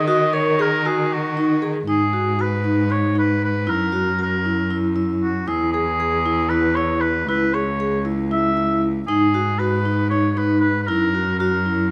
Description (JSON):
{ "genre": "contemporary instrumental, chamber music in an uneven meter", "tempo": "233 BPM (eighths)", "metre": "7/8", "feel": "straight", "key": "G# minor", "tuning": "A4 = 440 Hz", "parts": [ { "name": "warm oboe", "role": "melody", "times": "0.0-11.9 s", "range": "F#4 to E5", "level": "-24 LUFS", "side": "equal", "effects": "none" }, { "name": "rich cello", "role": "bass", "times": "0.0-11.9 s", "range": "C#2 to D#3", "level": "-26 LUFS", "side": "equal", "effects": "none" }, { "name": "vibraphone with medium mallets", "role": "arpeggios", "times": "0.1-11.8 s", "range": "D#4 to A#4", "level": "-24 LUFS", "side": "equal", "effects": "none" } ], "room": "moderate concert hall reverb, RT60 1.8 s", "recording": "none", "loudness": "-20 LUFS", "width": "mono", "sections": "0.0-1.9 A section; 1.9-11.9 B section", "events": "none", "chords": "0.0 D#m; 1.9 G#m7; 3.7 F#7; 5.5 E; 7.3 C#m; 9.1 G#m7; 10.9 F#7", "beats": "| 0.07 0.33 0.59 0.84 1.10 1.36 1.61 | 1.87 2.13 2.39 2.64 2.90 3.16 3.42 | 3.67 3.93 4.19 4.45 4.70 4.96 5.22 | 5.48 5.73 5.99 6.25 6.51 6.76 7.02 | 7.28 7.54 7.79 8.05 8.31 8.57 8.82 | 9.08 9.34 9.60 9.86 10.11 10.37 10.63 | 10.89 11.14 11.40 11.66" }